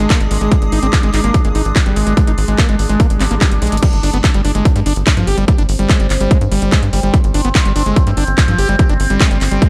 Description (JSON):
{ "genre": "psychedelic trance", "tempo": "145 BPM", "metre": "4/4", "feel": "straight", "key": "unclear", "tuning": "A4 = 444 Hz", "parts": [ { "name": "overtone-sweeping drone", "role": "sustained chords", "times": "0.0-9.7 s", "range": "C4 to D4", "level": "-26 LUFS", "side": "equal", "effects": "chorus, built-in reverb, sidechain pumping" }, { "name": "overdriven acid bass", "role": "riff", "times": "0.0-9.7 s", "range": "F3 to G4", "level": "-22 LUFS", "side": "equal", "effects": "distortion, sidechain pumping, digital delay" }, { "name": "tight sequencer bass", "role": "bass", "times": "0.0-9.6 s", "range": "G1 to G2", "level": "-18 LUFS", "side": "equal", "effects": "none" }, { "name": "techno drum kit", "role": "drums", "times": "0.0-9.7 s", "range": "crash cymbal, handclaps, hi-hat", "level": "-24 LUFS", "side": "equal", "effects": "small room ambience" }, { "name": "granular cloud pad", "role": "texture", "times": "0.0-3.8 s", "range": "Ab3 to Eb6", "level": "-28 LUFS", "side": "equal", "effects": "built-in reverb, sidechain pumping" }, { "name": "electronic kick drum", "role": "drums", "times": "0.1-9.7 s", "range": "none", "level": "-15 LUFS", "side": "equal", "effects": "small room ambience" }, { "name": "swell", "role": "sound effects", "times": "3.2-3.8 s", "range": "none", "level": "-30 LUFS", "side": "equal", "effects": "none" } ], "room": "light reverb", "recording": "dark, warm production", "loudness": "-14 LUFS", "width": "mono", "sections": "0.0-3.8 A section; 3.8-9.7 B section", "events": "drum fill 3.6; drop 3.8-9.7", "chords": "0.0 Ab5; 3.8 G5" }